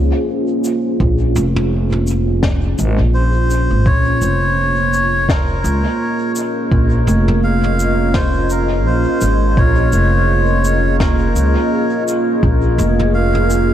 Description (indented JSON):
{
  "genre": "ambient dub",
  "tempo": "84 BPM",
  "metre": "4/4",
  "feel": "swing 58% on 16ths",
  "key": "Bb minor",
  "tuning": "A4 = 440 Hz",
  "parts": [
    { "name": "deep dark ambient pad", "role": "sustained chords", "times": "0.0-13.7 s", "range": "Bb3 to Eb5", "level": "-18 LUFS", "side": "equal", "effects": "chorus, built-in reverb" },
    { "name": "upright bass", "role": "bass", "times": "0.0-13.7 s", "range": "F1 to Db2", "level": "-15 LUFS", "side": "equal", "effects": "none" },
    { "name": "vintage brush drum kit", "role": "drums", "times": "0.6-13.7 s", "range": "shaker, snare drum, toms", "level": "-24 LUFS", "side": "left 1 dB", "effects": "dub echo" },
    { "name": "electronic kick drum", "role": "drums", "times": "1.0-12.6 s", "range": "none", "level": "-17 LUFS", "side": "equal", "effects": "none" },
    { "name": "melodica", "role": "melody", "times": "3.1-13.7 s", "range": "Bb4 to F5", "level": "-20 LUFS", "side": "equal", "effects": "dub echo" }
  ],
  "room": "light reverb, small room ambience",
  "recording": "none",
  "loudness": "-13 LUFS",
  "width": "side -10 dB against mid",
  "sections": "0.0-3.9 A section; 3.9-13.7 B section",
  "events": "none",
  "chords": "0.0 Bbm11"
}